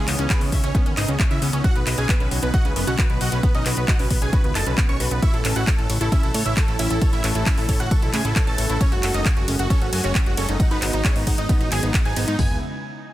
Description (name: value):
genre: uplifting trance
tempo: 134 BPM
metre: 4/4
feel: straight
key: C# minor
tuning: A4 = 440 Hz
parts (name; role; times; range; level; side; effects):
- supersaw chords; melody; 0.0-12.6 s; B3 to C#6; -28 LUFS; right 1 dB; cassette tape, sidechain pumping, dub echo
- bright grand piano; second line; 0.0-12.6 s; C#5 to C#7; -34 LUFS; right 1 dB; sidechain pumping, dub echo
- analog string pad; sustained chords; 0.0-12.6 s; C#3 to B4; -32 LUFS; equal; ensemble chorus, sidechain pumping
- fat analog bass; bass; 0.0-12.6 s; F#1 to A2; -24 LUFS; equal; sidechain pumping
- wide unison pluck; arpeggios; 0.1-12.6 s; B3 to C#6; -30 LUFS; right 2 dB; sidechain pumping, dub echo
- big-room dance drum kit; drums; 0.1-12.4 s; handclaps, hi-hat, ride cymbal; -27 LUFS; left 1 dB; none
- punchy analog drum machine; drums; 0.3-12.5 s; hi-hat, kick drum, toms; -20 LUFS; equal; none
room: digital ambience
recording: dense, heavily limited modern master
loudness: -18 LUFS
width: side -15 dB against mid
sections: 0.0-12.4 A section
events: drop 0.0-12.4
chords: 0.0 C#m7; 1.6 Badd9; 5.2 A; 8.8 F#madd9; 10.6 G#m7; 12.4 C#m7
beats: 0.30 0.75 1.20 | 1.64 2.09 2.54 2.99 | 3.43 3.88 4.33 4.78 | 5.22 5.67 6.12 6.57 | 7.02 7.46 7.91 8.36 | 8.81 9.26 9.70 10.15 | 10.60 11.05 11.49 11.94 | 12.39